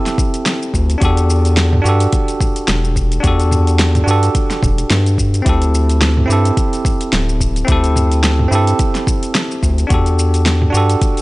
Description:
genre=sunset chillout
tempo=108 BPM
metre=4/4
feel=swing 57% on 16ths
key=E minor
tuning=A4 = 439 Hz
part: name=bell-like tine electric piano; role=accompaniment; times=0.0-11.2 s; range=C4 to A4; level=-18 LUFS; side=moving between left 3 dB and right 3 dB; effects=auto-pan, analog delay
part: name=deep house drum kit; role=drums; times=0.1-11.2 s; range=hi-hat, shaker, snare drum, toms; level=-19 LUFS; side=equal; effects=studio reverb
part: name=electronic kick drum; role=drums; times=0.2-11.1 s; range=none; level=-17 LUFS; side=equal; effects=studio reverb
part: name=round analog bass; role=bass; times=0.7-11.0 s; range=D1 to G2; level=-14 LUFS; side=equal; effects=none
room=little or no reverb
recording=dry, gritty hardware recording, nothing above 10.7 kHz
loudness=-12 LUFS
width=side -20 dB against mid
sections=0.0-11.2 A section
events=none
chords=0.0 D9sus4; 1.0 Em11; 5.5 D9sus4; 9.9 Em11

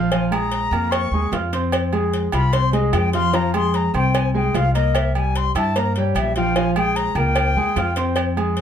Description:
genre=Afro-Cuban jazz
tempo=149 BPM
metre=4/4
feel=straight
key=F minor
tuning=A4 = 438 Hz
part: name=warm baby grand piano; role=accompaniment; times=0.0-8.6 s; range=F3 to F6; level=-22 LUFS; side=right 2 dB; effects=none
part: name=upright bass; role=bass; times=0.0-8.6 s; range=Bb1 to G2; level=-22 LUFS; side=equal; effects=none
part: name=silver concert flute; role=second line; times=0.1-8.2 s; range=Db5 to Db6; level=-23 LUFS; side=left 5 dB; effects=none
part: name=agogo bells and timbales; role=percussion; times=0.1-8.6 s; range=none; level=-28 LUFS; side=right 3 dB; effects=none
part: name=cowbell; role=percussion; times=0.1-8.6 s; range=none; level=-27 LUFS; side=left 1 dB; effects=none
room=light reverb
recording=none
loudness=-17 LUFS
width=side -8 dB against mid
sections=0.0-8.6 A section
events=flute solo 0.0-8.6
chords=0.0 Bbm7; 1.7 Fm; 4.9 C7; 6.6 Bbm7

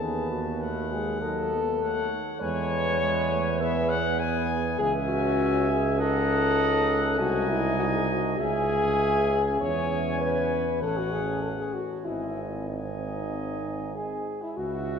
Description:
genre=classical, brass quintet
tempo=100 BPM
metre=4/4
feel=straight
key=E major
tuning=A4 = 440 Hz
part: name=warm trumpet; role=melody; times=0.0-15.0 s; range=E5 to A5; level=-34 LUFS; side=left 5 dB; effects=none
part: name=mellow flugelhorn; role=second line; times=0.0-15.0 s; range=E4 to E5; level=-34 LUFS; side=right 4 dB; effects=none
part: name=clear French horn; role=accompaniment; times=0.0-15.0 s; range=D#4 to C#5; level=-28 LUFS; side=left 4 dB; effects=none
part: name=clear trombone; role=accompaniment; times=0.0-14.2 s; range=F#3 to D#4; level=-36 LUFS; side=right 2 dB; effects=none
part: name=clear tuba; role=bass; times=0.0-15.0 s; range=G#1 to E2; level=-29 LUFS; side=right 3 dB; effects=none
room=wet church reverb, RT60 3.5 s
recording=none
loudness=-24 LUFS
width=side -7 dB against mid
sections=0.0-14.6 A section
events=none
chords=0.0 B7/D#; 2.4 E; 4.8 C#m; 6.0 D#m7b5/C#; 7.2 G#/B#; 8.4 C#m; 9.6 C#m/E; 10.8 F#m/A; 12.1 G#

